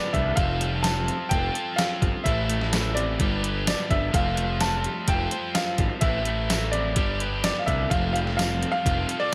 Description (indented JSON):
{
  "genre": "indie rock",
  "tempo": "127 BPM",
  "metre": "4/4",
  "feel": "straight",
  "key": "unclear",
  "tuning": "A4 = 442 Hz",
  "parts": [
    { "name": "bright upright piano", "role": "melody", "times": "0.0-9.3 s", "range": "D5 to A5", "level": "-31 LUFS", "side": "equal", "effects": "delay" },
    { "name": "high-gain distorted guitar", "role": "riff", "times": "0.0-9.3 s", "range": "F2 to A4", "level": "-33 LUFS", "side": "equal", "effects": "distortion, subtle chorus" },
    { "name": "overdriven electric guitar", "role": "riff", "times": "0.0-9.3 s", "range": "A2 to C5", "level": "-38 LUFS", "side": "equal", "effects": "subtle chorus" },
    { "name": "fuzz picked electric bass", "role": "bass", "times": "0.1-9.0 s", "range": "F1 to C2", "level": "-30 LUFS", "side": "equal", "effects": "overdrive" },
    { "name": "crisp 8-bit digital drum machine", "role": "drums", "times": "0.1-9.2 s", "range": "hi-hat, kick drum, snare drum, tambourine", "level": "-29 LUFS", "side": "equal", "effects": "overdrive, gated reverb" }
  ],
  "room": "light reverb",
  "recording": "bright 1980s-style digital production",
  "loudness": "-25 LUFS",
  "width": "mono",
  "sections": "0.0-9.3 A section",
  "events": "none",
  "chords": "0.4 Fadd9; 2.3 Am; 3.2 G; 4.1 Fadd9; 6.0 Am; 7.0 G; 7.9 Fadd9",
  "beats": "| 0.36 0.83 1.31 1.78 | 2.25 2.72 3.19 3.67 | 4.14 4.61 5.08 5.55 | 6.03 6.50 6.97 7.44 | 7.91 8.39 8.86 9.33"
}